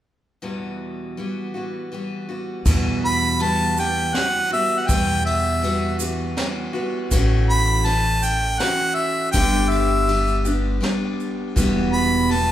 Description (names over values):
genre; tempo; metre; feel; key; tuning
acoustic folk duo or small band; 81 BPM; 3/4; straight; E dorian; A4 = 440 Hz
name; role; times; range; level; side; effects
picked steel-string acoustic guitar; accompaniment; 0.4-12.5 s; E2 to G4; -24 LUFS; equal; none
upright bass; bass; 2.7-12.5 s; E1 to E2; -23 LUFS; equal; none
vintage brush drum kit; drums; 2.7-12.5 s; crash cymbal, kick drum, ride cymbal, snare drum; -28 LUFS; equal; none
tube shaker; percussion; 2.7-11.7 s; none; -33 LUFS; right 5 dB; none
bright harmonica; melody; 3.0-12.5 s; E5 to B5; -21 LUFS; equal; none
room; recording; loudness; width
moderate recital hall reverb, RT60 1.5 s; recorded in a church or concert hall; -18 LUFS; side -12 dB against mid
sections
0.4-2.7 A section; 2.7-12.5 B section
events
none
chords
0.4 Emadd9; 7.1 A6; 9.3 G; 11.6 Emadd9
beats
| 0.43 1.17 1.92 | 2.66 3.41 4.15 | 4.89 5.63 6.37 | 7.12 7.86 8.60 | 9.34 10.08 10.83 | 11.57 12.31